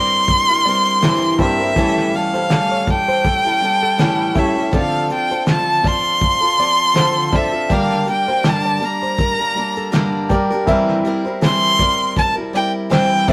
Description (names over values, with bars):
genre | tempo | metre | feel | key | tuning
acoustic pop | 81 BPM | 4/4 | swing 55% on 16ths | D minor | A4 = 439 Hz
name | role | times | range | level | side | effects
rich violin | melody | 0.0-13.3 s | E5 to C6 | -19 LUFS | equal | none
clear upright piano | accompaniment | 0.0-13.3 s | G2 to E5 | -26 LUFS | equal | none
picked steel-string acoustic guitar | accompaniment | 0.0-13.3 s | G2 to Bb4 | -24 LUFS | equal | none
nylon-string guitar | arpeggios | 0.0-13.3 s | G4 to D5 | -30 LUFS | equal | none
cloth-damped thuddy drum kit | drums | 0.3-13.3 s | kick drum, shaker, snare drum | -22 LUFS | equal | none
room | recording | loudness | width
light reverb | rough rehearsal-room recording | -17 LUFS | mono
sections
0.0-13.3 A section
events
none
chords
0.0 C7/G; 1.8 A7; 4.7 Dm7; 7.7 Gm; 10.7 C7/G